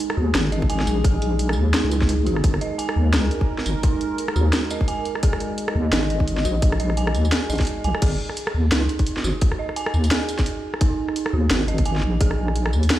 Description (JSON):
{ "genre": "half-time drum and bass", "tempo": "172 BPM", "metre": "4/4", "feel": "swing 58% on 16ths, half-time", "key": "unclear", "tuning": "A4 = 440 Hz", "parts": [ { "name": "dark analog pad", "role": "sustained chords", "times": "0.0-8.0 s", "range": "G#3 to D#5", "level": "-29 LUFS", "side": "left 1 dB", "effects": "chorus, phaser, vintage 12-bit sampler grit, sidechain pumping" }, { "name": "dark detuned synth bell", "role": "arpeggios", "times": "0.0-13.0 s", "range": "D#4 to G#5", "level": "-28 LUFS", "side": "right 4 dB", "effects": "chorus, dub echo" }, { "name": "drum and bass drum kit", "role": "drums", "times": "0.0-13.0 s", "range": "crash cymbal, hi-hat, rim click, snare drum, tambourine", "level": "-26 LUFS", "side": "equal", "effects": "small room reverb" }, { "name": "deep soft wobble bass", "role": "bass", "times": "0.2-12.9 s", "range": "G#1 to D#2", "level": "-20 LUFS", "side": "equal", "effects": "chorus, tube saturation" }, { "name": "electronic kick drum", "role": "drums", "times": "0.6-12.3 s", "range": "none", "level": "-20 LUFS", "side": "equal", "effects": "small room reverb" } ], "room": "little or no reverb", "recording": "played on a big sound system in a bare room, stone room reverb", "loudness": "-19 LUFS", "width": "side -14 dB against mid", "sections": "0.0-8.0 A section; 8.0-13.0 A section", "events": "drop 0.0-8.0, 8.0-13.0", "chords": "0.0 G#5" }